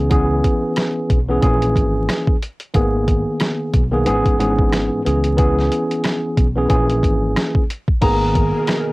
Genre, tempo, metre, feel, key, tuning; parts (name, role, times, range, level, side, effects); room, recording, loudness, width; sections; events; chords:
hip hop, boom-bap hip-hop; 91 BPM; 4/4; swing 58% on 16ths; G# minor; A4 = 440 Hz
tine electric piano; accompaniment; 0.0-8.9 s; G#2 to G#4; -18 LUFS; equal; overdrive, fast stereo tremolo, cassette tape, high-pass filter, low-pass filter
deep dub fingered electric bass; bass; 0.0-8.5 s; G#1 to C#2; -20 LUFS; equal
boom bap sampler-style drum kit; drums; 0.1-8.9 s; crash cymbal, hi-hat, kick drum, rim click, snare drum; -18 LUFS; equal
flamenco guitar; melody; 8.0-8.6 s; A#5; -21 LUFS; left 2 dB; high-pass filter, low-pass filter, cassette tape, tape echo
lush unison pad; sustained chords; 8.0-8.9 s; B2 to A#4; -26 LUFS; right 2 dB; chorus, phaser, high-pass filter, low-pass filter, cassette tape
little or no reverb; home recording on cassette, vinyl crackle; -15 LUFS; side -22 dB against mid
0.0-8.0 A section
0.0 C#m7; 1.4 A#m7b5; 2.7 G#madd9; 4.1 E6/G#; 5.1 C#m7; 6.7 A#m7b5; 8.0 G#madd9